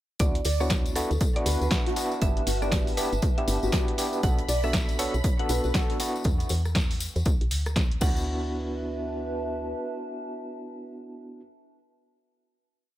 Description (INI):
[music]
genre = deep house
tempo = 119 BPM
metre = 4/4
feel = swing 60% on 16ths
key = D major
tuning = A4 = 440 Hz
[part]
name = mallet-like synth pluck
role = melody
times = 0.2-11.4 s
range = A4 to F#5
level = -36 LUFS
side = right 1 dB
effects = chorus, digital delay
[part]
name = overdriven tine electric piano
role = stabs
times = 0.2-11.4 s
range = B3 to A4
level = -32 LUFS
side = equal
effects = fast tremolo, sidechain pumping, digital delay
[part]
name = woody FM bass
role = bass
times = 0.2-9.7 s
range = G1 to E2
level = -29 LUFS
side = equal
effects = sidechain pumping
[part]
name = electronic kick drum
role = drums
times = 0.2-8.1 s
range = none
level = -26 LUFS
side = equal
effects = none
[part]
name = punchy analog drum machine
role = drums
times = 0.2-8.1 s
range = crash cymbal, hi-hat, rim click, snare drum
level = -32 LUFS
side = equal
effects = none
[part]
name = soft brush drum kit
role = drums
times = 0.2-6.1 s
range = hi-hat, snare drum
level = -41 LUFS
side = right 3 dB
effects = sidechain pumping on hats, high-pass filter on hats, high-pass filter on snare, high-pass filter on room
[part]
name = tambourine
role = percussion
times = 0.2-8.2 s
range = none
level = -38 LUFS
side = left 5 dB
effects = none
[part]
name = warbly tape-like pad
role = texture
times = 1.2-11.8 s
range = B4 to A5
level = -37 LUFS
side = right 1 dB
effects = chorus, built-in reverb, sidechain pumping
[part]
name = airy dreamy lead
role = melody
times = 0.5-5.9 s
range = F#4 to D5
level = -34 LUFS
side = equal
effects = chorus, digital delay
[part]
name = string machine, violins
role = texture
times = 4.2-6.3 s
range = B5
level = -41 LUFS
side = equal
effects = ensemble chorus, sidechain pumping
[sound]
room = digital ambience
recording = none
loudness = -24 LUFS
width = side -14 dB against mid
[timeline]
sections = 0.2-8.3 drop; 8.3-12.3 final note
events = drop 0.2-8.3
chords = 0.2 D69; 2.2 G6; 4.2 Bm7; 6.0 E7(no3); 8.0 D69